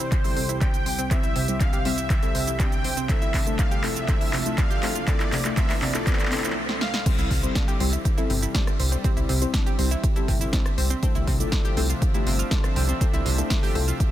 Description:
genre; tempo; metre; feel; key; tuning
progressive house; 121 BPM; 4/4; straight; C major; A4 = 440 Hz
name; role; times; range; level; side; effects
soft supersaw; melody; 0.0-7.0 s; C5 to G5; -32 LUFS; equal; digital delay
lush unison pad; sustained chords; 0.0-14.1 s; C2 to G5; -34 LUFS; right 1 dB; chorus, sidechain pumping
analog pluck; arpeggios; 0.0-13.9 s; C3 to G4; -31 LUFS; right 1 dB; chorus, cassette tape, sidechain pumping, digital delay
deep house drum kit; drums; 0.0-14.1 s; crash cymbal, handclaps, hi-hat, rim click, shaker, snare drum; -29 LUFS; right 1 dB; sidechain pumping on perc, sidechain pumping on hats, sidechain pumping on cymbals
riser; sound effects; 0.0-6.6 s; none; -39 LUFS; right 1 dB; none
electronic kick drum; drums; 0.1-14.1 s; none; -23 LUFS; equal; none
deep mellow chord stab; stabs; 0.2-13.8 s; G3 to C5; -31 LUFS; left 4 dB; wide subtle chorus, sidechain pumping, digital delay
round analog bass; bass; 7.2-13.9 s; G1 to C2; -24 LUFS; equal; tube saturation, sidechain pumping
room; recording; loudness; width
light reverb; dense, heavily limited modern master; -21 LUFS; side -13 dB against mid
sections
0.0-7.1 A section; 7.1-14.1 B section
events
build-up 0.0-7.1; drum fill 0.0-6.6, 6.7-7.1; break 6.6-7.1; drop 7.1-14.1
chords
0.0 C; 3.1 Dmadd9/C; 7.1 C; 11.0 Dmadd9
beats
0.12 0.61 | 1.11 1.60 2.10 2.60 | 3.09 3.59 4.08 4.58 | 5.08 5.57 6.07 6.56 | 7.06 7.56 8.05 8.55 | 9.04 9.54 10.04 10.53 | 11.03 11.52 12.02 12.51 | 13.01 13.51 14.00

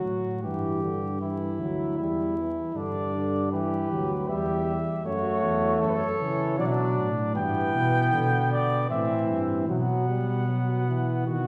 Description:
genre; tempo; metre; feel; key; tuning
classical, imitative canzona for brass ensemble; 78 BPM; 3/4; straight; unclear; A4 = 440 Hz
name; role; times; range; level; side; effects
clear flugelhorn; second line; 0.0-11.5 s; B3 to A4; -34 LUFS; equal; none
clear trombone; accompaniment; 0.0-11.5 s; D3 to A3; -32 LUFS; equal; none
mellow tuba; bass; 0.0-11.5 s; D2 to C#3; -31 LUFS; equal; none
mellow trumpet; melody; 2.7-11.5 s; B4 to G5; -32 LUFS; equal; none
room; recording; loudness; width
wet recital hall reverb, RT60 1.4 s; heard from further back in the room, vinyl crackle; -26 LUFS; mono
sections
0.0-11.5 A section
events
none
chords
0.4 Em/G; 2.0 Em; 2.8 G; 4.3 Em; 5.1 F#m; 6.6 Bm; 7.4 G; 8.9 Am; 9.7 Bsus4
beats
| 0.44 1.22 1.99 | 2.76 3.53 4.29 | 5.06 5.82 6.59 | 7.36 8.13 8.90 | 9.69 10.48 11.27

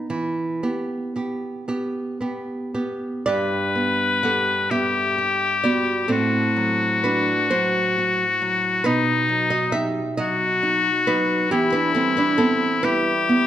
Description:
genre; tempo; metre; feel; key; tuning
romantic duo for oboe and classical guitar; 36-46 BPM (dotted quarters); 6/8; rubato; E minor; A4 = 440 Hz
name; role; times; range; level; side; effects
nylon-string guitar; accompaniment; 0.0-13.5 s; G2 to F#5; -22 LUFS; right 2 dB; none
bright oboe; melody; 3.3-13.5 s; D#4 to B4; -21 LUFS; left 4 dB; none
room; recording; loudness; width
moderate recital hall reverb, RT60 1.6 s; none; -19 LUFS; side -11 dB against mid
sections
0.0-3.3 A section; 3.3-13.5 A section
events
none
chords
0.1 Em; 3.3 G; 6.1 F#dim/A; 8.9 B; 11.5 Em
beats
| 0.11 1.69 | 3.28 4.72 | 6.11 7.53 | 8.86 10.19 | 11.51 12.85

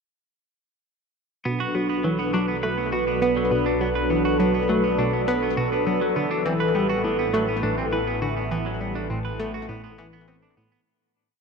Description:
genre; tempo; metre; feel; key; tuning
ambient, sequencer-driven space music; 102 BPM; 4/4; straight; B minor; A4 = 440 Hz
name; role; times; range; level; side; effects
phased analog pad; sustained chords; 1.5-10.8 s; E3 to B4; -24 LUFS; equal; phaser, chorus
clean electric guitar; arpeggios; 1.5-10.8 s; F#3 to B4; -28 LUFS; right 2 dB; auto-pan, ping-pong delay
analog pluck; riff; 1.5-10.7 s; A2 to C4; -26 LUFS; equal; chorus, ping-pong delay
room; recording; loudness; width
wet cathedral reverb, RT60 5.8 s; in a vast, echoing space; -21 LUFS; side -5 dB against mid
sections
1.5-10.9 A section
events
fade-out 7.7-10.9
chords
1.5 Bm7; 6.2 A5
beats
| 1.46 2.04 2.63 3.22 | 3.81 4.40 4.99 5.57 | 6.16 6.75 7.34 7.93 | 8.51 9.10 9.69 10.28

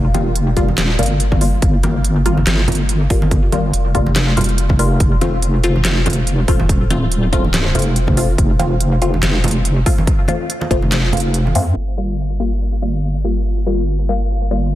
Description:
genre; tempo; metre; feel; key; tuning
deep dubstep; 142 BPM; 4/4; swing 56% on 16ths, half-time; G minor; A4 = 441 Hz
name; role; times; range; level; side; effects
deep soft wobble bass; bass; 0.0-14.8 s; Eb1 to F2; -17 LUFS; equal; chorus
filtered dub chord stab; stabs; 0.1-14.8 s; G3 to F4; -21 LUFS; left 2 dB; phaser, dub echo
dubstep drum kit; drums; 0.1-11.6 s; handclaps, hi-hat, snare drum; -21 LUFS; equal; low-pass filter on hats, low-pass filter on snare
congas; percussion; 0.1-11.5 s; none; -24 LUFS; right 2 dB; dub echo
electronic kick drum; drums; 0.6-10.8 s; none; -16 LUFS; equal; none
room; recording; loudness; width
light reverb; dense, heavily limited modern master, low-pass filter; -14 LUFS; side -14 dB against mid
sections
0.0-11.8 A section; 11.8-14.8 B section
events
drop 0.0-11.8; kick drops out 11.3-11.8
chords
0.0 Gm7; 5.0 F; 11.8 Gm7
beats
0.36 0.78 1.20 | 1.62 2.05 2.47 2.89 | 3.31 3.74 4.16 4.58 | 5.00 5.43 5.85 6.27 | 6.69 7.12 7.54 7.96 | 8.38 8.81 9.23 9.65 | 10.07 10.50 10.92 11.34 | 11.76 12.19 12.61 13.03 | 13.45 13.88 14.30 14.72

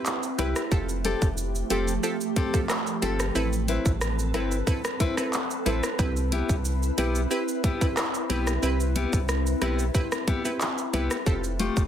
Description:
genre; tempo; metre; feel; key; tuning
dancehall; 91 BPM; 4/4; straight; unclear; A4 = 441 Hz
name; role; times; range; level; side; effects
wavetable chord stab; accompaniment; 0.0-11.9 s; C4 to B4; -31 LUFS; right 2 dB; sidechain pumping
glassy FM pad; sustained chords; 0.0-11.9 s; F3 to B4; -32 LUFS; equal; ensemble chorus, built-in reverb, sidechain pumping
island pop drum kit; drums; 0.1-11.9 s; handclaps, hi-hat, kick drum, rim click, shaker; -28 LUFS; equal; soft clipping on snare
maracas and timbales; percussion; 0.1-11.9 s; none; -42 LUFS; right 6 dB; none
nylon-string guitar; arpeggios; 0.4-11.8 s; A3 to B4; -31 LUFS; left 4 dB; none
warm sub bass; bass; 0.4-11.9 s; F1 to C2; -28 LUFS; equal; none
room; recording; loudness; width
digital ambience; dense, heavily limited modern master; -24 LUFS; side -10 dB against mid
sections
0.0-11.9 A section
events
none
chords
0.0 Cmaj7; 0.7 Fadd9; 3.4 Amadd9; 6.0 Cmaj7; 11.3 Fadd9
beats
0.06 | 0.72 1.38 2.04 2.69 | 3.35 4.01 4.67 5.33 | 5.99 6.65 7.31 7.97 | 8.63 9.29 9.95 10.61 | 11.27

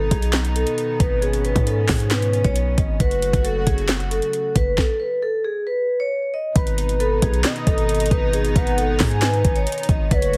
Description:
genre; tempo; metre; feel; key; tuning
hip hop, trap; 135 BPM; 4/4; half-time; G# phrygian; A4 = 440 Hz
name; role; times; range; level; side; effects
vibraphone with medium hard mallets; melody; 0.0-10.4 s; G#4 to D#5; -25 LUFS; equal; none
warm studio string section; sustained chords; 0.0-10.4 s; B2 to F#4; -32 LUFS; equal; none
hard-hitting 808-style bass; bass; 0.0-10.4 s; F#1 to G#2; -24 LUFS; equal; none
trap drum kit; drums; 0.1-10.4 s; handclaps, hi-hat, kick drum, snare drum; -24 LUFS; equal; none
gliding portamento lead; second line; 6.6-10.4 s; B4 to G#5; -30 LUFS; equal; chorus, tape echo
room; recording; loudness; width
light reverb, digital ambience; heavily compressed radio sound, multiband compression; -20 LUFS; mono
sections
0.0-6.6 A section; 6.6-10.4 B section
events
none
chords
0.0 G#m; 3.0 F#m; 6.6 G#m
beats
0.33 0.78 | 1.22 1.67 2.11 2.56 | 3.00 3.44 3.89 4.33 | 4.78 5.22 5.67 6.11 | 6.56 7.00 7.45 7.89 | 8.33 8.78 9.22 9.67 | 10.11

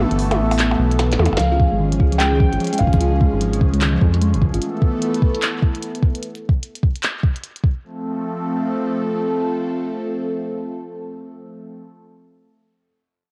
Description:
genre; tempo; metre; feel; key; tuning
IDM; 149 BPM; 4/4; swing 62% on 16ths; unclear; A4 = 439 Hz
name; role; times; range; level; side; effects
felt-muted upright piano; melody; 0.0-3.6 s; E5 to G5; -27 LUFS; equal; cassette tape, tape echo
phased analog pad; sustained chords; 0.0-11.8 s; E3 to A4; -25 LUFS; equal; phaser, chorus, cassette tape
round analog bass; bass; 0.0-4.6 s; G1 to F2; -21 LUFS; equal; none
glitchy drum kit; drums; 0.1-7.6 s; handclaps, hi-hat, percussion blips, snare drum, toms; -26 LUFS; equal; cassette tape, tape echo
thumb-piano-like synth pluck; arpeggios; 1.4-4.6 s; Eb3 to F4; -26 LUFS; equal; chorus, cassette tape, analog delay
electronic kick drum; drums; 1.6-7.7 s; none; -19 LUFS; equal; cassette tape
room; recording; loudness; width
moderate spring reverb, RT60 1.9 s; home recording on cassette; -19 LUFS; mono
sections
0.0-1.4 A section; 1.4-7.8 B section; 7.8-11.1 C section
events
break 0.0-1.4; drum fill 1.0-1.4; band accent 1.4; filter sweep on synth arpeggio sound 1.4-4.6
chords
0.0 Asus2; 1.4 Db; 4.6 Asus2; 7.8 F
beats
0.19 0.59 0.99 | 1.39 1.80 2.20 2.60 | 3.00 3.41 3.81 4.21 | 4.62 5.02 5.42 5.82 | 6.23 6.63 7.03 7.43 | 7.84 8.24 8.64 9.04 | 9.45 9.85 10.25 10.66

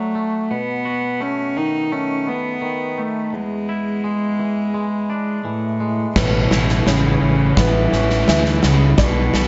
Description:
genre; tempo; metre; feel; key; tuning
post-rock; 85 BPM; 4/4; straight; A major; A4 = 440 Hz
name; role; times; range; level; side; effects
clear cello; melody; 0.0-9.5 s; A2 to D#4; -22 LUFS; equal; tape echo
twangy electric guitar; arpeggios; 0.0-9.5 s; E2 to F#4; -29 LUFS; equal; tape echo
clear studio string section; sustained chords; 6.2-9.5 s; B3 to B4; -32 LUFS; equal; none
felt-muted upright piano; arpeggios; 6.2-9.5 s; B4 to E5; -30 LUFS; equal; none
modern bright fingered electric bass; bass; 6.2-9.5 s; A1 to D2; -21 LUFS; equal; none
huge arena drum kit; drums; 6.2-9.5 s; crash cymbal, kick drum, snare drum; -21 LUFS; equal; none
room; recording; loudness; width
light reverb, small room reverb; dark, warm production, nothing above 7.8 kHz; -19 LUFS; mono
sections
0.0-6.2 A section; 6.2-9.5 A section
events
none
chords
0.0 Bm7 (rootless); 0.5 B7; 3.3 E7; 6.2 Aadd9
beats
| 0.50 1.21 1.92 2.62 | 3.33 4.04 4.75 5.45 | 6.16 6.87 7.58 8.28 | 8.99

